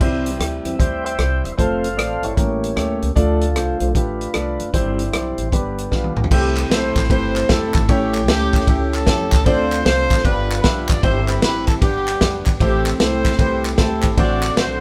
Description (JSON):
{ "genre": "uptempo gospel", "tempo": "152 BPM", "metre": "4/4", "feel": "swing 64% on 8ths", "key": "C major", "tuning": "A4 = 440 Hz", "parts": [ { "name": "warm baby grand piano", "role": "accompaniment", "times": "0.0-14.8 s", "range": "G2 to F5", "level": "-27 LUFS", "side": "equal", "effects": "none" }, { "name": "tonewheel organ", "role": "sustained chords", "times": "0.0-14.8 s", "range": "D3 to G5", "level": "-27 LUFS", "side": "equal", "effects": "slow rotary speaker" }, { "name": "upright bass", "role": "bass", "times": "0.0-14.8 s", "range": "E1 to F2", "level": "-26 LUFS", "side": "equal", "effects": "none" }, { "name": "warm soul drum kit", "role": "drums", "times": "0.0-14.7 s", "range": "crash cymbal, hi-hat, kick drum, ride cymbal, rim click, snare drum, toms", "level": "-21 LUFS", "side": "equal", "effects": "none" }, { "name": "warm horn section", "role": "melody", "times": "6.3-14.8 s", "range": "B3 to D5", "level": "-24 LUFS", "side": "equal", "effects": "none" }, { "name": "group handclap", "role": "percussion", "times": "6.6-14.5 s", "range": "none", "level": "-30 LUFS", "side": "equal", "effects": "none" } ], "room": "moderate studio reverb, RT60 0.5 s", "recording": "band playing live in one room", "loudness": "-18 LUFS", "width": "mono", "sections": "0.0-6.3 A section; 6.3-14.8 B section", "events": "tonewheel organ solo 0.0-6.3; drum fill 5.9-6.3", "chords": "0.0 C; 1.6 F; 2.4 A7b9; 3.2 Dm; 4.7 C/G; 5.5 G; 6.3 C6; 7.9 A7; 9.5 Dm7; 10.2 G7; 11.0 C/G; 11.8 G; 12.6 Am7; 14.2 D7/A" }